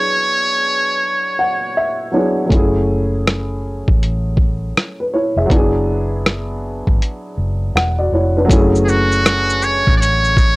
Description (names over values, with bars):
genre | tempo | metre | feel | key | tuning
lo-fi hip hop | 80 BPM | 4/4 | swing 63% on 16ths | F# minor | A4 = 440 Hz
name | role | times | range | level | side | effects
trumpet with metal mute | melody | 0.0-2.1, 8.8-10.6 s | F#4 to D5 | -16 LUFS | right 1 dB | low-pass filter, analog delay
dark upright piano | accompaniment | 0.0-10.6 s | F#3 to F#5 | -18 LUFS | equal | cassette tape, low-pass filter
vintage muted fingered electric bass | bass | 2.5-10.6 s | E1 to A1 | -19 LUFS | equal | transformer saturation
lo-fi sampler-style drum kit | drums | 2.5-10.6 s | hi-hat, kick drum, rim click, shaker | -14 LUFS | equal | vintage 12-bit sampler grit
room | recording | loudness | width
little or no reverb | dry, gritty hardware recording | -14 LUFS | side -22 dB against mid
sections
0.0-8.5 A section; 8.5-10.6 B section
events
upright piano fill 1.0-2.5; kick muted 7.0-8.5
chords
0.0 E7/F#; 2.5 F#m7; 5.5 E7/F#; 8.5 F#m7